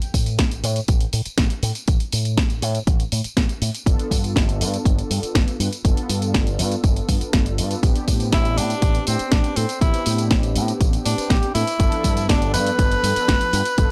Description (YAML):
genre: nu-disco, nu disco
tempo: 121 BPM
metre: 4/4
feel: straight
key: unclear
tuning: A4 = 441 Hz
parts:
  - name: house drum kit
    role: drums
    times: 0.0-13.9 s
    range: hi-hat, snare drum, tambourine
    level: -28 LUFS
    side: equal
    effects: none
  - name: fingered electric bass with an envelope filter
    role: bass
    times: 0.1-13.9 s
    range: G1 to A2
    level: -26 LUFS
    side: equal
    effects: tube saturation
  - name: electronic kick drum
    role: drums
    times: 0.1-13.9 s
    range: none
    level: -22 LUFS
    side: equal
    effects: none
  - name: mellow synth brass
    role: accompaniment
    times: 3.9-13.9 s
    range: F3 to B4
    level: -31 LUFS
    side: equal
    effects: chorus, sidechain pumping
  - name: clear tenor saxophone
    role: melody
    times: 8.3-13.9 s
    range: C4 to B4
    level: -26 LUFS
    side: equal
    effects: tape echo
room: digital ambience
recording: dry, gritty hardware recording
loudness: -20 LUFS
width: mono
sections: 0.0-13.9 A section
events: none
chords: 0.0 N.C.; 3.9 G7; 7.8 Am11; 11.8 G7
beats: 0.39 0.89 1.38 | 1.88 2.38 2.87 3.37 | 3.86 4.36 4.85 5.35 | 5.85 6.34 6.84 7.33 | 7.83 8.32 8.82 9.32 | 9.81 10.31 10.80 11.30 | 11.80 12.29 12.79 13.28 | 13.78